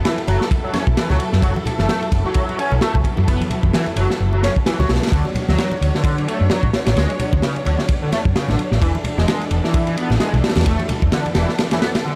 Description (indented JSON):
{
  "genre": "breakbeat, breaks",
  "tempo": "130 BPM",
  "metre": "4/4",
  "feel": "swing 57% on 16ths",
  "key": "F# minor",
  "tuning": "A4 = 443 Hz",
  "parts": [
    { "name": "dark studio string section", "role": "sustained chords", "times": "0.0-12.2 s", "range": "E3 to C#5", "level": "-28 LUFS", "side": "equal", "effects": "sidechain pumping" },
    { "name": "overdriven synth lead", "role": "riff", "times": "0.0-12.2 s", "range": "C#3 to C#4", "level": "-26 LUFS", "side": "equal", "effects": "ensemble chorus, dub echo" },
    { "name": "crunchy breakbeat drum kit", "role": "drums", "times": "0.0-12.0 s", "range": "kick drum, ride cymbal, snare drum", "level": "-22 LUFS", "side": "equal", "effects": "dub echo" },
    { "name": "hollow-body short-scale fingered electric bass", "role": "bass", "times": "0.3-11.4 s", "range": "E1 to F#2", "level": "-21 LUFS", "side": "equal", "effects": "none" },
    { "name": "congas", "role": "percussion", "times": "0.3-11.8 s", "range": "none", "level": "-31 LUFS", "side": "equal", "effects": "none" }
  ],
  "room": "light reverb, small room ambience",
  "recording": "echo-heavy mix",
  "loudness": "-18 LUFS",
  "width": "mono",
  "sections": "0.0-12.2 A section",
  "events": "kick drops out 11.6-12.2",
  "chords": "0.0 F#m7; 5.1 Dmaj7; 8.8 E7sus4",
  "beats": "0.04 0.51 0.97 | 1.43 1.89 2.35 2.81 | 3.28 3.74 4.20 4.66 | 5.12 5.58 6.04 6.51 | 6.97 7.43 7.89 8.35 | 8.81 9.28 9.74 10.20 | 10.66 11.12 11.58 12.04"
}